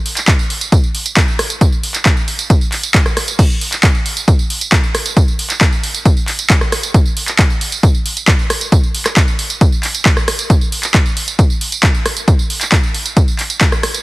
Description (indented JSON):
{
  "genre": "trance",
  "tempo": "135 BPM",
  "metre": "4/4",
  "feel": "straight",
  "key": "none",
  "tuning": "none",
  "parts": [
    { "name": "punchy analog drum machine", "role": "drums", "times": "0.1-14.0 s", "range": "crash cymbal, handclaps, hi-hat, rim click, tambourine", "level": "-16 LUFS", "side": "right 1 dB", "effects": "none" },
    { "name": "electronic kick drum", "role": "drums", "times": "0.3-13.7 s", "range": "none", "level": "-12 LUFS", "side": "equal", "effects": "none" }
  ],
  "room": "little or no reverb",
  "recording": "heavily compressed radio sound",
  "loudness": "-11 LUFS",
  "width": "side -20 dB against mid",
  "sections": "0.0-14.0 A section",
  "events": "none",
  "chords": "none"
}